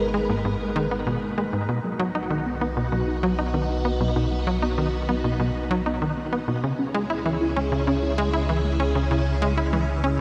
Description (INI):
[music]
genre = ambient, sequencer-driven space music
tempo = 97 BPM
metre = 4/4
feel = straight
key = unclear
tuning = A4 = 441 Hz
[part]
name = phased string machine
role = sustained chords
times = 0.0-10.2 s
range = C#3 to B4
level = -31 LUFS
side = equal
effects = ensemble chorus, phaser
[part]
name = warbly dusty pluck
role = arpeggios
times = 0.0-10.2 s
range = F#3 to E5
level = -33 LUFS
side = equal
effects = chorus, tape echo
[part]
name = round analog bass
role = bass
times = 0.0-10.2 s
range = G#1 to C#2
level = -30 LUFS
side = equal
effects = none
[part]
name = tight sequencer bass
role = riff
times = 0.1-10.2 s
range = G#2 to E4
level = -28 LUFS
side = equal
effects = tape echo
[sound]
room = wet cathedral reverb, RT60 6.2 s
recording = in a vast, echoing space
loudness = -24 LUFS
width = mono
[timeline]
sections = 0.0-10.2 A section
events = none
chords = 0.0 G#madd9; 1.7 B; 6.6 C#m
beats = 0.45 1.07 | 1.69 2.31 2.92 3.54 | 4.16 4.78 5.40 6.02 | 6.63 7.25 7.87 8.49 | 9.11 9.73